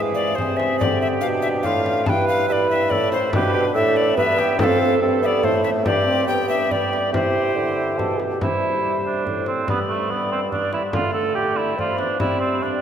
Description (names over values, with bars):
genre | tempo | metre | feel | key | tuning
classical, renaissance-style consort dance | 142 BPM | 3/4 | straight | C major | A4 = 440 Hz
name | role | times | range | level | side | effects
dark cor anglais | second line | 0.0-12.8 s | A3 to B4 | -23 LUFS | right 4 dB | none
clear trombone | accompaniment | 0.0-12.8 s | G3 to A4 | -26 LUFS | left 1 dB | none
mellow bassoon | bass | 0.0-12.8 s | F2 to G3 | -24 LUFS | right 1 dB | none
alto recorder | melody | 0.1-12.8 s | B4 to A5 | -24 LUFS | left 4 dB | none
frame drum | percussion | 0.4-12.4 s | none | -28 LUFS | equal | none
room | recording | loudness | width
wet cathedral reverb, RT60 4.9 s | none | -18 LUFS | side -8 dB against mid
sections
0.0-8.4 A section; 8.4-12.8 B section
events
none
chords
0.0 Fm (rootless); 0.8 Dm; 2.1 G6; 2.5 G; 4.6 F; 5.9 Gsus4; 6.3 G; 7.1 C; 9.7 G5; 10.9 Dm; 12.2 Gsus4